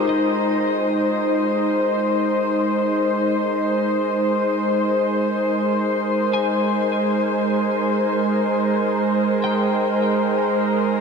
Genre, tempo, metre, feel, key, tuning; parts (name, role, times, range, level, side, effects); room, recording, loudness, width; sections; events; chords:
ambient; free time; Ab major; A4 = 440 Hz
warm analog pad; sustained chords; 0.0-11.0 s; Ab3 to C5; -18 LUFS; equal; chorus
twelve-string electric guitar; arpeggios; 0.0-11.0 s; G4 to Ab5; -32 LUFS; left 2 dB; wide subtle chorus, tape echo
hand-pumped harmonium; drone; 0.0-11.0 s; Ab3 to Bb4; -36 LUFS; left 1 dB
wet shimmer reverb, RT60 8.4 s; dark, warm production; -18 LUFS; side -5 dB against mid
0.1-11.0 A section
fade-in on clean electric guitar 0.1-11.0
0.1 Abmaj9